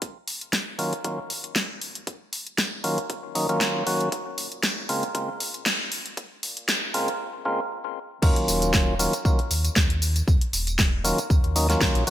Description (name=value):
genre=deep house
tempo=117 BPM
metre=4/4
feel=swing 54% on 16ths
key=Eb minor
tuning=A4 = 440 Hz
part: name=sub bass with octave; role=bass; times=0.0-12.0 s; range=Eb1 to Bb2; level=-26 LUFS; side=equal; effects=tube saturation, sidechain pumping, high-pass filter
part: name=deep house drum kit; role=drums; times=0.0-12.1 s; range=crash cymbal, hi-hat, snare drum, tambourine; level=-26 LUFS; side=equal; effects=small room ambience
part: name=electronic kick drum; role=drums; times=0.0-11.9 s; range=none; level=-23 LUFS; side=equal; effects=high-pass filter on kick, small room ambience, high-pass filter on room
part: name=percussive tonewheel organ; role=stabs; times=0.8-12.1 s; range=Db3 to Gb4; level=-26 LUFS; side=equal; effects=overdrive, sidechain pumping, ping-pong delay
room=moderate plate reverb, RT60 1.7 s, digital ambience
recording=bright 1980s-style digital production, high-pass filter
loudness=-22 LUFS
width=side -12 dB against mid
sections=0.0-8.2 A section; 8.2-12.1 B section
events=build-up 0.0-8.2; break 7.2-8.2; drop 8.2-12.1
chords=0.0 Ebm9; 4.1 Bbm9; 8.2 Ebm9